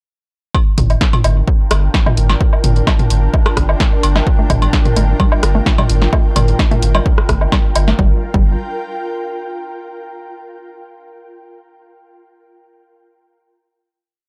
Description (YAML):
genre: minimal techno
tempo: 129 BPM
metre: 4/4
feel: straight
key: G minor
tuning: A4 = 440 Hz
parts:
  - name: electronic kick drum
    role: drums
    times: 0.5-8.4 s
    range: none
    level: -16 LUFS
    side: equal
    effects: none
  - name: organic electronic drum kit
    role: percussion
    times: 0.5-7.9 s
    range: cowbell, rim click, toms, woodblock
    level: -20 LUFS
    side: equal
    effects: analog delay
  - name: ethereal airy pad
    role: texture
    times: 1.2-9.8 s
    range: F4 to G5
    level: -28 LUFS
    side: equal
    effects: ensemble chorus, built-in reverb, sidechain pumping
  - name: swarming drone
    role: texture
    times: 1.2-8.0 s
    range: D4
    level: -32 LUFS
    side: equal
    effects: built-in reverb, sidechain pumping
  - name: saturated sub bass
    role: bass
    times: 0.8-8.6 s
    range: G1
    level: -17 LUFS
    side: equal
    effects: sidechain pumping
  - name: punchy analog drum machine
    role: drums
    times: 0.8-8.0 s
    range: hi-hat, snare drum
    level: -23 LUFS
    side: equal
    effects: none
  - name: hollow square pluck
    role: riff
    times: 4.4-8.6 s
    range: G3 to A3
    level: -25 LUFS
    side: equal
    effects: chorus, phaser, sidechain pumping, tape echo
room: light reverb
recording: dry, gritty hardware recording, transformer saturation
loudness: -14 LUFS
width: mono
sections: 0.5-8.0 groove; 8.0-9.8 final chord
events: none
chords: 0.5 Gm7